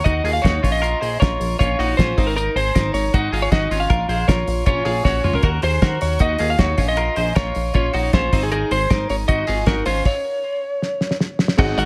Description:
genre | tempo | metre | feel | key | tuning
jangly indie pop | 156 BPM | 4/4 | straight | unclear | A4 = 442 Hz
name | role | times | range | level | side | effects
lightly driven lead guitar | melody | 0.0-11.9 s | Ab4 to Gb5 | -25 LUFS | equal | none
twelve-string electric guitar | arpeggios | 0.0-11.9 s | C4 to C5 | -26 LUFS | equal | spring reverb
chorused synth bass | bass | 0.1-11.9 s | Ab1 to Eb2 | -25 LUFS | equal | none
cloth-damped thuddy drum kit | drums | 0.1-11.9 s | crash cymbal, hi-hat, kick drum, snare drum, toms | -23 LUFS | equal | none
mellow reed electric piano | accompaniment | 11.6-11.9 s | C4 to Ab4 | -25 LUFS | equal | none
picked steel-string acoustic guitar | accompaniment | 11.6-11.9 s | Gb3 to Ab4 | -33 LUFS | equal | none
room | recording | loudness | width
light reverb | none | -19 LUFS | mono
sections
0.0-11.6 A section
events
drum fill 5.1-5.4, 10.8-11.6; stop 10.1-11.6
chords
0.0 Ebm; 0.6 Bbm; 2.2 Abadd9; 3.9 Bbm; 5.4 Ebm; 6.8 Bbm; 8.3 Abadd9; 10.1 N.C.

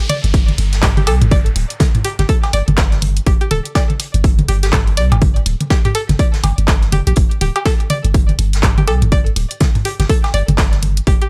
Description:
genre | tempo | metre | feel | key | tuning
minimal techno | 123 BPM | 4/4 | swing 60% on 16ths | unclear | A4 = 439 Hz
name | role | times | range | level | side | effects
house drum kit | drums | 0.0-11.3 s | handclaps, hi-hat | -25 LUFS | equal | overdrive
downlifter | sound effects | 0.0-3.3 s | none | -34 LUFS | equal | none
string-like resonator pluck | riff | 0.1-11.3 s | G4 to D5 | -25 LUFS | equal | chorus, vintage 12-bit sampler grit, sidechain pumping, tape echo
vintage brush drum kit | drums | 0.1-11.2 s | hi-hat, snare drum | -33 LUFS | equal | sidechain pumping on hats, high-pass filter on hats, high-pass filter on snare, high-pass filter on room
electronic toms and cowbell | percussion | 0.1-10.9 s | none | -22 LUFS | equal | overdrive, tape echo
punchy sub bass | bass | 0.2-11.2 s | D1 to C2 | -18 LUFS | equal | sidechain pumping
electronic kick drum | drums | 0.3-11.2 s | none | -16 LUFS | equal | overdrive
room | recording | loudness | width
little or no reverb | none | -15 LUFS | mono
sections
0.0-11.3 A section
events
none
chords
none

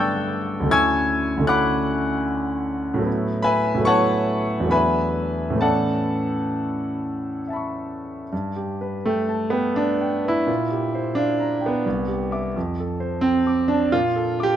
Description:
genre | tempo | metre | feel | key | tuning
classical, impressionist solo piano | 64-90 BPM | 3/4 | rubato | A major | A4 = 440 Hz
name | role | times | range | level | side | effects
clear concert grand piano | solo | 0.0-14.6 s | C2 to A6 | -20 LUFS | equal | none
room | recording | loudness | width
light reverb | close, detailed microphones | -20 LUFS | side -10 dB against mid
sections
0.0-8.3 A section; 8.3-14.6 B section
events
none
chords
0.0 Gadd9; 0.7 Dmaj9; 3.1 A69; 4.7 E9sus4; 5.6 Aadd9; 8.3 Gadd9; 10.5 Bbsus2; 11.8 Cmaj9; 12.6 F69; 13.9 Bbmaj7

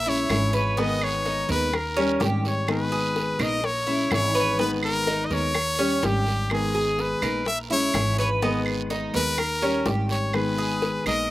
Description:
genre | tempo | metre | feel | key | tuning
latin, Cuban son and guajira | 126 BPM | 4/4 | straight | G# harmonic minor | A4 = 441 Hz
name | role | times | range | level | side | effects
brilliant trumpet | melody | 0.0-11.3 s | G4 to E5 | -26 LUFS | left 1 dB | none
Cuban tres | arpeggios | 0.0-11.3 s | B3 to B4 | -29 LUFS | right 2 dB | none
upright bass | bass | 0.0-11.3 s | G#1 to D#2 | -29 LUFS | equal | none
nylon-string guitar | accompaniment | 0.1-11.3 s | D#3 to A#4 | -28 LUFS | left 1 dB | slapback echo
bongos | percussion | 0.3-11.1 s | none | -31 LUFS | left 3 dB | slapback echo
claves | percussion | 0.3-11.3 s | none | -33 LUFS | right 4 dB | slapback echo
guiro | percussion | 0.3-11.3 s | none | -38 LUFS | right 5 dB | none
room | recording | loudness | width
little or no reverb | recorded outdoors, with no room sound, faint mains hum | -21 LUFS | side -16 dB against mid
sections
0.0-11.3 A section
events
none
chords
0.0 A#m7b5; 0.8 G#madd9; 1.7 D#7; 2.7 G#madd9; 3.6 A#m7b5; 4.6 G#madd9; 5.5 D#7; 6.5 G#madd9; 7.5 A#m7b5; 8.4 G#madd9; 9.4 D#7; 10.3 G#madd9

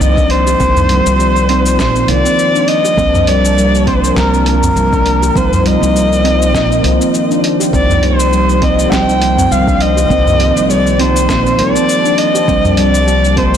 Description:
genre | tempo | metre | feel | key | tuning
organic downtempo | 101 BPM | 4/4 | swing 56% on 16ths | C dorian | A4 = 435 Hz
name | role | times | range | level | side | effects
warm kamancheh | melody | 0.0-13.6 s | Bb4 to G5 | -14 LUFS | left 1 dB | tape echo
mellow tine electric piano | accompaniment | 0.0-13.6 s | Eb3 to Eb4 | -19 LUFS | right 2 dB | medium stereo tremolo, sidechain pumping, ping-pong delay
warm analog pad | sustained chords | 0.0-13.6 s | Eb3 to A5 | -21 LUFS | left 2 dB | chorus, sidechain pumping
upright bass | bass | 0.0-13.6 s | Bb1 to C2 | -15 LUFS | equal | none
dusty soul sampler-style drum kit | drums | 0.0-13.6 s | cabasa, hi-hat, snare drum | -22 LUFS | left 1 dB | overdrive, small room ambience
handpan | arpeggios | 0.2-13.6 s | G3 to G4 | -17 LUFS | right 1 dB | ping-pong delay
electronic kick drum | drums | 0.2-13.5 s | none | -19 LUFS | equal | small room ambience
udu | percussion | 0.8-12.8 s | none | -19 LUFS | right 1 dB | none
room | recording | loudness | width
light reverb, small room ambience | blown-out, overdriven recording, overdrive | -9 LUFS | side -9 dB against mid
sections
0.0-13.6 A section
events
none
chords
0.0 Cm; 3.0 Gmadd9/C; 5.4 F7sus4/C; 7.7 Cm; 12.5 Gmadd9/C

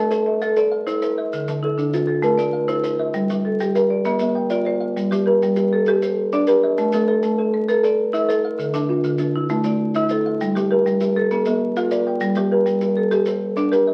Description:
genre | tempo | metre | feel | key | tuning
southern african traditional, mbira-style interlocking cycle | 132 BPM (dotted quarters) | 12/8 | straight | G equiheptatonic | A4 = 440 Hz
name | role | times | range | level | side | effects
kalimba | arpeggios | 0.0-13.9 s | D3 to G5 | -23 LUFS | equal | none
marimba with medium hard mallets | arpeggios | 0.0-13.9 s | D3 to F5+29c | -23 LUFS | equal | none
maracas | percussion | 0.1-13.9 s | none | -45 LUFS | equal | none
room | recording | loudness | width
wet club reverb, RT60 0.8 s | very old 78 rpm record, vinyl crackle | -20 LUFS | mono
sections
0.0-5.0 A section; 5.0-13.9 B section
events
none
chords
0.0 Am; 1.3 Dm; 2.2 Am; 3.1 Gm; 4.1 Bb; 5.0 Gm; 6.8 Am; 8.6 Dm; 9.5 Am; 10.4 Gm; 11.3 Bb; 12.2 Gm

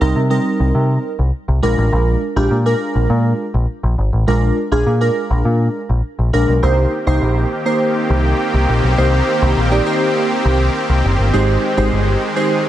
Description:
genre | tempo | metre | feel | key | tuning
pop | 102 BPM | 4/4 | straight | C minor | A4 = 440 Hz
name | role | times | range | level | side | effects
glassy digital keys | accompaniment | 0.0-12.7 s | G3 to D5 | -18 LUFS | right 2 dB | chorus
deep dub picked electric bass | bass | 0.0-12.1 s | F#1 to C3 | -15 LUFS | equal | none
supersaw chords | sustained chords | 6.6-12.7 s | Eb3 to G4 | -18 LUFS | equal | none
room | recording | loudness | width
light reverb, digital ambience | nothing above 10.8 kHz | -14 LUFS | side -12 dB against mid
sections
0.0-6.6 A section; 6.6-12.7 B section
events
none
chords
0.0 Cm7; 1.6 Bb7; 6.6 Cm7; 11.3 Abmaj7

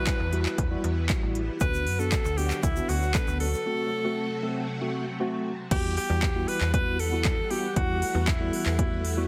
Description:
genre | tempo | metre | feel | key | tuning
dance-pop | 117 BPM | 4/4 | straight | E minor | A4 = 440 Hz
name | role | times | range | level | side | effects
bright alto saxophone | melody | 0.0-9.3 s | E4 to B4 | -33 LUFS | equal | none
mellow tine electric piano | accompaniment | 0.0-9.3 s | G3 to A4 | -35 LUFS | equal | ensemble chorus, sidechain pumping
string machine, violins | sustained chords | 0.0-9.3 s | C3 to F#5 | -39 LUFS | equal | ensemble chorus, sidechain pumping
slap-like FM bass | bass | 0.0-9.3 s | A1 to F#2 | -31 LUFS | equal | sidechain pumping
downlifter | sound effects | 0.0-1.6 s | none | -51 LUFS | equal | none
house drum kit | drums | 0.1-9.2 s | crash cymbal, handclaps, hi-hat, kick drum | -30 LUFS | equal | none
egg shaker | percussion | 1.6-3.7 s | none | -46 LUFS | equal | none
room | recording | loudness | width
light reverb | heavily compressed radio sound | -27 LUFS | mono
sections
0.0-5.7 A section; 5.7-9.3 B section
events
break 3.7-5.7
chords
0.0 Emadd9; 1.6 Bm/D; 3.7 F#dim; 5.7 Emadd9

